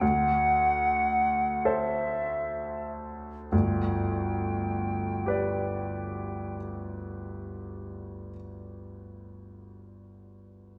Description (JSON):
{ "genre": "classical, romantic duo for flute and grand piano", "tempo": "30-38 BPM (dotted quarters)", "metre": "12/8", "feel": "rubato", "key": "G major", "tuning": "A4 = 441 Hz", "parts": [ { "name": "silver concert flute", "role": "melody", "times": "0.0-6.5 s", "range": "E5 to G5", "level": "-31 LUFS", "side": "equal", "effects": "none" }, { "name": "bright baby grand piano", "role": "accompaniment", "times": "0.0-10.8 s", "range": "G1 to D5", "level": "-33 LUFS", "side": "equal", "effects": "none" } ], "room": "wet scoring stage reverb, RT60 1.8 s", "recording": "none", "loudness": "-29 LUFS", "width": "mono", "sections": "0.0-3.5 A section; 3.5-10.4 B section", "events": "slowing down 0.0-3.5", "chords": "0.0 D7; 3.5 G" }